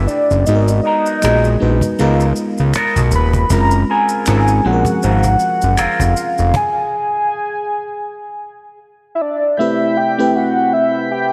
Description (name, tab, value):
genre	R&B, neo-soul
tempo	79 BPM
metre	4/4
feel	swing 57% on 16ths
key	unclear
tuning	A4 = 440 Hz
part	FM electric piano	accompaniment	0.0-11.3 s	E#3 to B4	-22 LUFS	equal	none
part	fat analog bass	bass	0.0-6.5 s	D#1 to C#2	-17 LUFS	equal	none
part	warm velvety synth lead	melody	0.1-11.3 s	D5 to B5	-20 LUFS	equal	chorus, tremolo
part	cajon	drums	0.1-6.7 s	none	-26 LUFS	equal	none
part	maracas and finger snaps	percussion	0.1-6.5 s	none	-32 LUFS	equal	none
part	electric guitar through a small old amp	second line	0.8-6.0 s	F#3 to A#4	-25 LUFS	equal	wah, tape echo
part	tonewheel organ	sustained chords	9.6-11.3 s	C3 to B4	-27 LUFS	equal	slow rotary speaker
room	moderate lush hall reverb, RT60 2.8 s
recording	big arena sound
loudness	-15 LUFS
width	mono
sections	0.0-9.6 A section; 9.6-11.3 B section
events	stop 6.5-9.6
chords	0.5 G#m9; 2.0 C#13; 3.5 F#maj9#11; 6.5 N.C.; 9.6 Am9